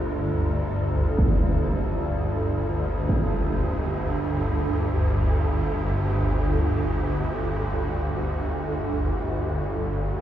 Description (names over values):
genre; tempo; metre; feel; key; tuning
dark ambient drone; free time; none; none; unclear; A4 = 440 Hz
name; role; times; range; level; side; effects
swarming drone; drone; 0.0-10.2 s; G1 to D2; -23 LUFS; equal; built-in reverb, wide subtle chorus
bronze singing bowl; texture; 0.0-10.2 s; D5; -46 LUFS; left 6 dB; none
impact; percussion; 1.2-3.3 s; none; -26 LUFS; equal; low-pass filter on sfx
room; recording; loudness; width
moderate lush hall reverb, RT60 2.6 s; dreamy mix soaked in reverb; -22 LUFS; side -11 dB against mid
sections
0.0-10.2 A section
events
none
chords
0.0 G5